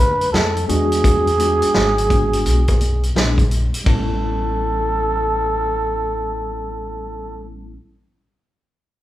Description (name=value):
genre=hip hop, jazz-hop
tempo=85 BPM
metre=4/4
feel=swing 64% on 16ths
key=unclear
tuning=A4 = 440 Hz
part: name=trumpet with cup mute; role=melody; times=0.0-7.5 s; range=G#4 to B4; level=-20 LUFS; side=right 1 dB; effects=none
part: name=upright bass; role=bass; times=0.0-7.7 s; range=G#1 to F2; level=-22 LUFS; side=equal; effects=none
part: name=vintage drum kit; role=drums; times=0.2-4.1 s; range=hi-hat, kick drum, ride cymbal, snare drum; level=-19 LUFS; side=equal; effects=none
part: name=tine electric piano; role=accompaniment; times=0.7-7.8 s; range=G3 to G#4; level=-26 LUFS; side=left 1 dB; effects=fast stereo tremolo
room=moderate large studio reverb, RT60 0.9 s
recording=band playing live in one room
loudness=-16 LUFS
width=side -14 dB against mid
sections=0.0-3.9 A section; 3.9-6.7 B section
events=none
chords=0.0 D5; 0.7 E9; 3.9 A9